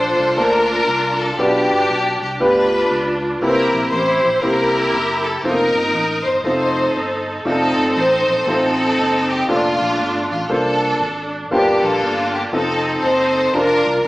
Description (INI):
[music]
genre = uptempo gospel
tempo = 118 BPM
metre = 4/4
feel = swing 63% on 8ths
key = Bb major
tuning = A4 = 440 Hz
[part]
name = bright studio string section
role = melody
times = 0.0-14.1 s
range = A3 to C5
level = -17 LUFS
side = equal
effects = none
[part]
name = clear upright piano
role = accompaniment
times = 0.0-14.1 s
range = G2 to A5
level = -18 LUFS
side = equal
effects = none
[part]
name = fingered electric bass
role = bass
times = 0.0-14.1 s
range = F1 to D2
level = -30 LUFS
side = equal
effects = none
[sound]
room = wet large studio reverb, RT60 0.9 s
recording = band playing live in one room, small speaker sound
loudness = -15 LUFS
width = side -18 dB against mid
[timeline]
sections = 0.0-14.1 A section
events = none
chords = 0.0 Bbmaj7; 1.4 G7; 3.4 C7; 5.4 F7sus4; 6.4 F7; 9.5 Bbmaj7/F; 11.5 Gm7; 12.5 F7; 13.5 Bb/F